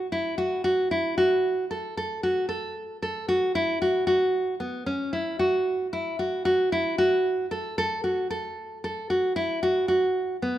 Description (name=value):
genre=contemporary instrumental, contemporary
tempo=227 BPM (eighths)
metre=11/8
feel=straight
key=unclear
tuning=A4 = 440 Hz
part: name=nylon-string guitar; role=solo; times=0.0-10.6 s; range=B3 to A4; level=-23 LUFS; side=equal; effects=none
room=moderate recital hall reverb, RT60 1.4 s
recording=none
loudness=-23 LUFS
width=side -12 dB against mid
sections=0.0-10.6 A section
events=none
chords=none